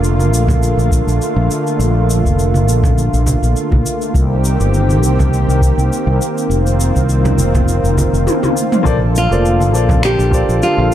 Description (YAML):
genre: sunset chillout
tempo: 102 BPM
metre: 4/4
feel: swing 55% on 16ths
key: Bb major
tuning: A4 = 439 Hz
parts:
  - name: lush unison pad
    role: sustained chords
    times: 0.0-10.9 s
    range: D3 to A4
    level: -17 LUFS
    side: equal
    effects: chorus
  - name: fretless electric bass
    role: bass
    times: 0.0-10.9 s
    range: F1 to C2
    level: -14 LUFS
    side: equal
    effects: none
  - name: deep house drum kit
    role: drums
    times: 0.0-10.9 s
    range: finger snaps, shaker, toms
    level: -22 LUFS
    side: equal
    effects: none
  - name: congas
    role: percussion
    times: 0.2-10.0 s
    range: none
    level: -22 LUFS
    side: right 2 dB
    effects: none
  - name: electronic kick drum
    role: drums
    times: 0.5-10.4 s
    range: none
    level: -17 LUFS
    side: equal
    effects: overdrive
  - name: warm grand piano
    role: accompaniment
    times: 8.8-10.9 s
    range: Bb3 to F5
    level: -19 LUFS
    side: moving between left 5 dB and right 1 dB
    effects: auto-pan
  - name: nylon-string guitar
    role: melody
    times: 9.2-10.9 s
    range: F4 to G4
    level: -16 LUFS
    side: equal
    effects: vintage 12-bit sampler grit, ping-pong delay
room: light reverb, digital ambience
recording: dark, warm production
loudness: -11 LUFS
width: side -11 dB against mid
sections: 0.0-10.9 A section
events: drum fill 8.3-8.9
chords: 0.0 Bbmaj7; 4.1 Cm7; 6.5 F7sus4; 8.9 Bbmaj7